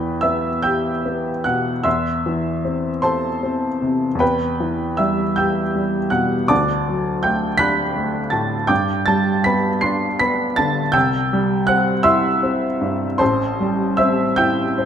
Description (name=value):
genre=classical, romantic nocturne for solo piano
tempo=47-56 BPM (dotted quarters)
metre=12/8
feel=rubato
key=E minor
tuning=A4 = 440 Hz
part: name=clear upright piano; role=solo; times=0.0-14.9 s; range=A1 to C7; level=-17 LUFS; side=equal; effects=none
room=moderate concert hall reverb, RT60 1.9 s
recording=close, detailed microphones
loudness=-17 LUFS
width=side -8 dB against mid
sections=0.0-14.9 A section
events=none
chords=0.0 Em; 1.9 Am/E; 4.2 Em; 6.5 D; 8.7 G; 10.9 C; 13.2 Am7